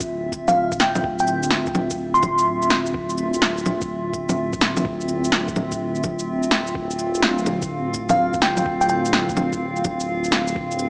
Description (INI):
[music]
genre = future garage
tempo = 126 BPM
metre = 4/4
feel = swing 66% on 16ths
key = D minor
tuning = A4 = 440 Hz
[part]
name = warbly tape-like pad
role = sustained chords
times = 0.0-10.9 s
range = C4 to F5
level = -24 LUFS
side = equal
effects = chorus, built-in reverb, sidechain pumping
[part]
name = dark detuned saw bass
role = bass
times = 0.0-10.9 s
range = D1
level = -28 LUFS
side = equal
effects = sidechain pumping
[part]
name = electronic kick drum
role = drums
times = 0.0-10.7 s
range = none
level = -32 LUFS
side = equal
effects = none
[part]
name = electronic shaker, cabasa, bongos and snare drum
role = drums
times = 0.0-10.9 s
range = none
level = -21 LUFS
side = equal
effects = none
[part]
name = bell-like FM electric piano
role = melody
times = 0.5-2.8, 8.1-9.0 s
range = F5 to C6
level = -21 LUFS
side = equal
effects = chorus, vintage 12-bit sampler grit, analog delay
[sound]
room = moderate lush hall reverb, RT60 2.1 s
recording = small speaker sound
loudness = -18 LUFS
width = side -30 dB against mid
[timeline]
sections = 0.0-10.9 A section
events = none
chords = 0.0 Dm9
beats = 0.09 0.56 | 1.04 1.51 1.99 2.47 | 2.94 3.42 3.90 4.37 | 4.85 5.32 5.80 6.28 | 6.75 7.23 7.71 8.18 | 8.66 9.13 9.61 10.09 | 10.56